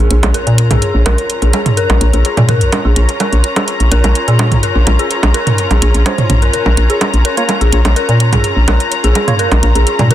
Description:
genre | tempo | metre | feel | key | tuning
minimal techno | 126 BPM | 4/4 | straight | Bb minor | A4 = 440 Hz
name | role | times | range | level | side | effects
dark detuned synth bell | riff | 0.0-10.1 s | Ab4 to C5 | -19 LUFS | left 1 dB | chorus, phaser, low-pass filter, ping-pong delay
hollow knocking FM bass | bass | 0.0-10.1 s | Bb1 to Bb2 | -11 LUFS | equal | tube saturation
impact | sound effects | 0.0-0.8 s | none | -29 LUFS | equal | none
dark studio string section | texture | 0.0-10.1 s | Db4 to Bb5 | -19 LUFS | left 2 dB | none
pulsing gated texture | texture | 0.0-10.1 s | Db5 | -26 LUFS | left 1 dB | chorus, built-in reverb
electronic hi-hat | drums | 0.1-10.1 s | none | -20 LUFS | right 2 dB | soft clipping on snare
electronic bongos and toms | percussion | 0.2-10.1 s | none | -17 LUFS | right 2 dB | ping-pong delay
percussive organ stab | stabs | 7.4-9.3 s | Bb3 to Db5 | -22 LUFS | right 2 dB | chorus, ping-pong delay
room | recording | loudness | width
light reverb | dense, heavily limited modern master | -10 LUFS | side -12 dB against mid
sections
0.0-10.1 A section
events
impact 0.0-0.8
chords
0.0 Bbm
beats
0.34 | 0.82 1.30 1.77 2.25 | 2.73 3.20 3.68 4.15 | 4.63 5.11 5.58 6.06 | 6.53 7.01 7.49 7.96 | 8.44 8.91 9.39 9.87

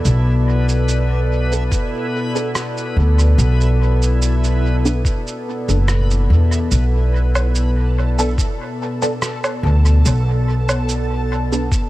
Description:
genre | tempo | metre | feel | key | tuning
ambient dub | 72 BPM | 4/4 | straight | B minor | A4 = 440 Hz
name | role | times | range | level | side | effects
warm analog pad | sustained chords | 0.0-11.9 s | B2 to D5 | -23 LUFS | left 1 dB | chorus
backwards swelling texture | texture | 0.0-11.9 s | E4 to A5 | -29 LUFS | equal | built-in reverb
upright bass | bass | 0.1-11.7 s | F#1 to E2 | -15 LUFS | equal | none
electronic cabasa, rim click and woodblock | drums | 0.1-11.9 s | none | -26 LUFS | right 2 dB | small room ambience, dub echo
filtered dub chord stab | stabs | 1.5-11.7 s | B3 to A4 | -26 LUFS | right 1 dB | phaser, ensemble chorus, dub echo
electronic kick drum | drums | 1.7-11.9 s | none | -18 LUFS | equal | small room ambience
room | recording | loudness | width
digital ambience | none | -15 LUFS | side -17 dB against mid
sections
0.0-11.9 A section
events
filter sweep on synth stab 0.0-11.9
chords
0.0 Bm7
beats
| 0.05 0.89 1.72 2.55 | 3.38 4.22 5.05 5.88 | 6.72 7.55 8.38 9.22 | 10.05 10.88 11.72

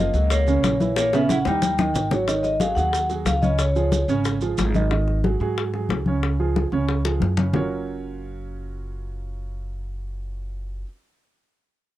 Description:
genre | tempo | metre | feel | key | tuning
Afro-Cuban jazz | 182 BPM | 4/4 | straight | F# major | A4 = 441 Hz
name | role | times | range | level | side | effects
vibraphone with soft mallets | melody | 0.0-4.2 s | C#5 to G5 | -24 LUFS | left 2 dB | none
archtop guitar, miked and amplified | second line | 0.0-2.1 s | A#3 to E4 | -30 LUFS | right 1 dB | none
warm upright piano | accompaniment | 0.0-10.8 s | C#3 to D#5 | -26 LUFS | right 4 dB | none
upright bass | bass | 0.0-10.8 s | F#1 to G#2 | -25 LUFS | equal | none
bongos | percussion | 0.1-7.6 s | none | -29 LUFS | left 8 dB | none
congas | percussion | 0.1-7.6 s | none | -26 LUFS | left 2 dB | none
maracas | percussion | 0.1-4.9 s | none | -36 LUFS | right 7 dB | none
room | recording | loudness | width
little or no reverb | dry, close 1970s-style studio recording | -19 LUFS | side -14 dB against mid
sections
0.0-2.3 A section; 2.3-7.5 B section; 7.5-10.2 C section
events
drum fill 1.0-2.3, 7.0-7.5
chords
0.0 F#maj7; 1.0 A#dim; 1.6 D#; 2.3 G#5; 3.6 C#; 4.9 G#5; 6.2 C#; 7.5 F#maj7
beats
0.30 0.63 | 0.96 1.29 1.62 1.95 | 2.28 2.61 2.94 3.26 | 3.59 3.92 4.25 4.58 | 4.91 5.24 5.57 5.89 | 6.22 6.55 6.88 7.21 | 7.54 7.87 8.20 8.53 | 8.86 9.18 9.51 9.84

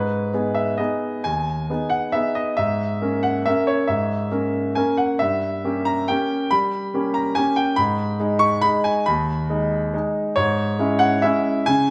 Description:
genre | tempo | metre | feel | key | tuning
classical, piano waltz | 138 BPM | 3/4 | uneven beats, rubato | G# minor | A4 = 440 Hz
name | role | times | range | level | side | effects
bright grand piano | solo | 0.0-11.9 s | D#2 to C#6 | -21 LUFS | equal | none
room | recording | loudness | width
moderate recital hall reverb, RT60 1.7 s | none | -21 LUFS | mono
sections
0.0-11.9 A section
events
none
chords
0.0 G#m; 2.6 A#m7b5/G#; 5.2 Gdim7; 7.8 G#m; 10.4 C#m/G#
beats
0.33 0.79 | 1.25 1.69 2.14 | 2.58 3.01 3.46 | 3.89 4.31 4.76 | 5.20 5.64 6.08 | 6.51 6.93 7.37 | 7.78 8.20 8.63 | 9.07 9.49 9.93 | 10.37 10.79 11.22 | 11.66

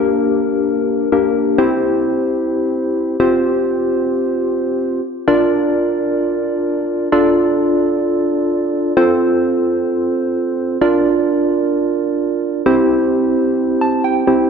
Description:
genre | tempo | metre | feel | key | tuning
pop | free time | none | none | F major | A4 = 440 Hz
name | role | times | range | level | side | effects
warm analog keys | solo | 0.0-14.5 s | Bb3 to A5 | -14 LUFS | equal | chorus
room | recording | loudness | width
wet concert hall reverb, RT60 2.3 s | dark, warm production | -14 LUFS | side -6 dB against mid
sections
0.0-7.1 A section; 7.1-14.5 B section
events
synth keys fill 13.6-14.5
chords
0.0 Gm; 1.6 C; 3.2 Fsus2; 5.3 Bb; 7.1 Dm; 9.0 F/C; 10.8 Bb; 12.7 C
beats
free time

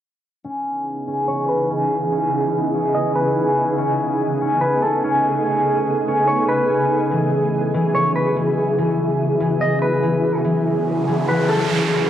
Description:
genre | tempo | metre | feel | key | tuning
hip hop | 144 BPM | 4/4 | half-time | E major | A4 = 441 Hz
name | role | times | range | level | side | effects
shimmering ambient pad | sustained chords | 0.9-12.1 s | C#3 to G#4 | -20 LUFS | right 1 dB | chorus, built-in reverb, low-pass filter, cassette tape
concert harp | arpeggios | 0.4-12.1 s | E3 to C#4 | -22 LUFS | left 1 dB | low-pass filter, cassette tape, tape echo
clean electric guitar | melody | 1.3-11.7 s | A4 to D#5 | -23 LUFS | equal | low-pass filter, cassette tape, tape echo
noise sweep | sound effects | 10.8-12.1 s | none | -25 LUFS | right 4 dB | none
room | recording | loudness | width
moderate spring reverb, RT60 2.0 s | home recording on cassette | -17 LUFS | side -10 dB against mid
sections
0.4-12.1 A section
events
filter sweep 0.4-12.1; noise sweep 10.8-12.1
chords
0.4 C#m9; 3.8 B13; 7.1 E69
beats
| 0.45 0.86 1.28 1.70 | 2.12 2.53 2.95 3.37 | 3.78 4.20 4.62 5.03 | 5.45 5.87 6.28 6.70 | 7.12 7.53 7.95 8.37 | 8.78 9.20 9.62 10.03 | 10.45 10.87 11.28 11.70

